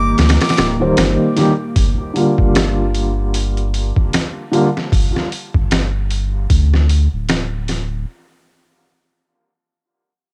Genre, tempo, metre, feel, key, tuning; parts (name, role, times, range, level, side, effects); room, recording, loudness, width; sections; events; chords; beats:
trip hop; 76 BPM; 4/4; swing 58% on 16ths; G minor; A4 = 438 Hz
breathy bright jazz flute; melody; 0.0-0.8 s; D6; -27 LUFS; equal; cassette tape, tape echo
felt-muted upright piano; accompaniment; 0.0-4.7 s; D3 to C5; -21 LUFS; equal; tremolo, vintage 12-bit sampler grit, cassette tape, tape echo
dark analog pad; sustained chords; 0.0-1.8 s; Bb3; -26 LUFS; equal; chorus, cassette tape
soft dub sub bass; bass; 0.0-8.0 s; D1 to D2; -19 LUFS; equal; tube saturation
trip hop sampler-style drum kit; drums; 0.2-7.9 s; hi-hat, kick drum, snare drum; -19 LUFS; equal; cassette tape
digital ambience; home recording on cassette; -16 LUFS; mono
0.0-1.8 A section; 1.8-10.3 B section
0.0 Eb/G; 1.8 Gm7; 8.1 N.C.
0.18 0.97 | 1.76 2.55 3.34 4.13 | 4.92 5.71 6.50 7.28